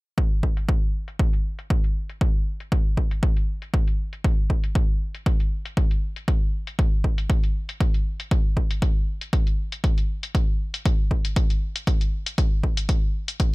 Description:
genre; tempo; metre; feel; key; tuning
deep house; 118 BPM; 4/4; swing 54% on 16ths; none; none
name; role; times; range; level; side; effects
electronic hi-hat; drums; 0.2-13.5 s; none; -34 LUFS; left 3 dB; low-pass filter on hats, low-pass filter on room
electronic kick drum; drums; 0.2-13.5 s; none; -21 LUFS; equal; none
room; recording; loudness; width
little or no reverb; none; -21 LUFS; side -23 dB against mid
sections
0.2-13.5 A section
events
none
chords
none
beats
| 0.18 0.69 1.20 1.70 | 2.21 2.72 3.23 3.74 | 4.25 4.75 5.26 5.77 | 6.28 6.79 7.30 7.80 | 8.31 8.82 9.33 9.84 | 10.35 10.86 11.36 11.87 | 12.38 12.89 13.40

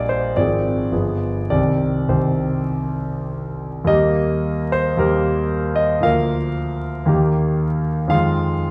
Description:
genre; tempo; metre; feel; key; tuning
classical, romantic character piece for solo piano; 97-118 BPM; 4/4; rubato; C minor, Eb major from 3.9 s; A4 = 439 Hz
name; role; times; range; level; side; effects
clear concert grand piano; solo; 0.0-8.7 s; G1 to F5; -20 LUFS; equal; none
room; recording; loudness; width
moderate recital hall reverb, RT60 1.4 s; dark, warm production, vinyl crackle; -20 LUFS; mono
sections
0.0-3.9 A section; 3.9-8.7 B section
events
none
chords
0.4 Fm/Ab; 0.9 G7b9; 1.5 Cm; 3.9 Eb; 6.1 Bb/D; 7.1 Eb; 8.1 Fm7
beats
0.36 0.91 | 1.50 2.11 2.71 3.28 | 3.88 4.45 5.00 5.53 | 6.06 6.58 7.09 7.61 | 8.13 8.67

